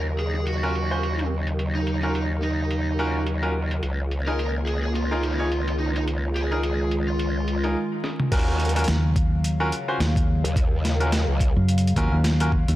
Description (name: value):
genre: glitch hop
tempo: 107 BPM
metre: 4/4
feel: swing 57% on 16ths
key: Eb minor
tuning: A4 = 440 Hz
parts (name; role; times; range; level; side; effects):
- warbly tape-like pad; sustained chords; 0.0-12.8 s; Db3 to F5; -30 LUFS; left 1 dB; chorus, built-in reverb, sidechain pumping
- growl bass; bass; 0.0-11.5 s; Db2 to Eb2; -25 LUFS; equal; chorus
- lead guitar through a small cranked amp; melody; 0.2-7.6 s; Eb4 to Bb4; -30 LUFS; right 1 dB; overdrive, analog delay
- boom bap sampler-style drum kit; drums; 0.2-12.8 s; crash cymbal, hi-hat, rim click, snare drum, toms; -30 LUFS; equal; overdrive, low-pass filter on hats, low-pass filter on snare, low-pass filter on toms, low-pass filter on cymbals, low-pass filter on room
- clear concert grand piano; stabs; 0.6-12.5 s; Db4 to Db5; -30 LUFS; equal; sidechain pumping, analog delay
- electronic kick drum; drums; 8.3-12.7 s; none; -22 LUFS; equal; overdrive
- fingered electric bass; bass; 8.9-12.8 s; Eb2 to Gb2; -21 LUFS; equal; none
room: light reverb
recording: dry, gritty hardware recording, vinyl crackle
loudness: -21 LUFS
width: side -15 dB against mid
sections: 0.0-8.3 A section; 8.3-12.8 B section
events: filter sweep on ambient pad 0.0-8.3; drum fill 8.0; drop 8.3-12.8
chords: 0.0 Ebm9; 3.8 Db69; 8.3 Ebm9